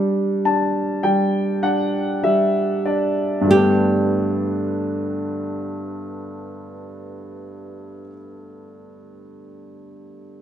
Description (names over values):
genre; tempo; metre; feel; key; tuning
pop ballad; 47-53 BPM; 4/4; straight; G major; A4 = 440 Hz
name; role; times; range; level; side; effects
flamenco guitar; melody; 0.0-8.1 s; G4; -18 LUFS; equal; none
warm baby grand piano; accompaniment; 0.0-10.4 s; G2 to A5; -20 LUFS; equal; none
room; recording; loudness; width
moderate stone room reverb, RT60 0.9 s; band playing live in one room; -18 LUFS; side -9 dB against mid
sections
0.0-3.5 A section; 3.5-8.6 B section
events
grand piano fill 0.0-3.5; slowing down 0.0-3.5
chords
0.0 G5; 3.5 Gadd9